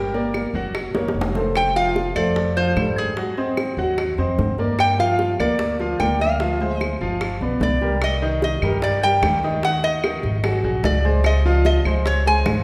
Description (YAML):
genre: Afro-Cuban jazz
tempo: 149 BPM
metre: 4/4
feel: straight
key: G minor, C minor from 8.0 s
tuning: A4 = 444 Hz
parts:
  - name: metal-body resonator slide guitar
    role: melody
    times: 0.0-12.6 s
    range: Ab4 to Ab5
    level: -24 LUFS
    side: equal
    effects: none
  - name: bright grand piano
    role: accompaniment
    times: 0.0-12.6 s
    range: Eb3 to G5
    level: -26 LUFS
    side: equal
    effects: none
  - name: upright bass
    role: bass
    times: 0.0-12.6 s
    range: F1 to Ab2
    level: -26 LUFS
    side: equal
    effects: none
  - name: bongos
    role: percussion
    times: 0.1-12.6 s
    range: none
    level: -31 LUFS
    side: equal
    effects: none
  - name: claves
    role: percussion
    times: 0.3-12.6 s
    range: none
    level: -36 LUFS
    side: equal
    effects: none
room: wet recital hall reverb, RT60 1.6 s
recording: recorded in a church or concert hall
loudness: -20 LUFS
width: mono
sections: 0.0-8.0 A section; 8.0-12.6 B section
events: drum fill 0.9-1.6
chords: 0.0 Gm; 0.7 F#; 1.6 Fadd9; 3.2 Ab9; 4.8 Gm7; 6.4 Dm7b5; 7.2 G7; 8.0 Cm7; 9.6 Ab5; 10.4 Ab7; 11.2 Dbmaj9